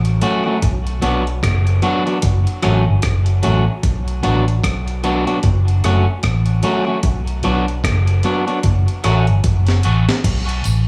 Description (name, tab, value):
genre	dub reggae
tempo	75 BPM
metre	4/4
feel	swing 59% on 16ths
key	B minor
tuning	A4 = 440 Hz
part	vintage muted fingered electric bass	bass	0.0-10.9 s	F#1 to B1	-18 LUFS	equal	none
part	breakbeat sampler-style drum kit	drums	0.0-10.9 s	crash cymbal, hi-hat, kick drum, rim click, snare drum	-24 LUFS	equal	none
part	electric guitar at the edge of break-up	accompaniment	0.2-10.1 s	F#3 to F#4	-22 LUFS	equal	high-pass filter, dub echo
part	mellow tonewheel organ	accompaniment	10.5-10.8 s	none	barely audible	none	none
part	tambourine	percussion	10.7-10.9 s	none	-32 LUFS	equal	high-pass filter on perc
room	light reverb, digital ambience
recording	studio reverb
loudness	-17 LUFS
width	mono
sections	0.0-10.2 A section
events	filter sweep 7.0-10.9; drum fill 9.4-10.2; break 10.2-10.9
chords	0.0 F#m; 0.6 Bm; 2.2 F#m; 3.8 Bm; 5.4 F#m; 7.0 Bm; 8.6 F#m; 10.2 Bm